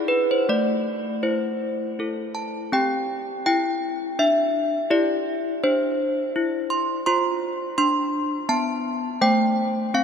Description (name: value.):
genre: classical, tune for handbells.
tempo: 83 BPM.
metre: 3/4.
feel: straight.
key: C major.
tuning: A4 = 443 Hz.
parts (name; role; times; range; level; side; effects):
desk bells; solo; 0.0-10.0 s; A3 to C6; -21 LUFS; equal; none.
room: wet cathedral reverb, RT60 5.9 s.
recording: none.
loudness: -21 LUFS.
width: side -7 dB against mid.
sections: 0.0-2.7 A section; 2.7-10.0 B section.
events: none.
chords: 0.5 Am; 2.7 C; 7.1 F; 9.2 F/A (rootless).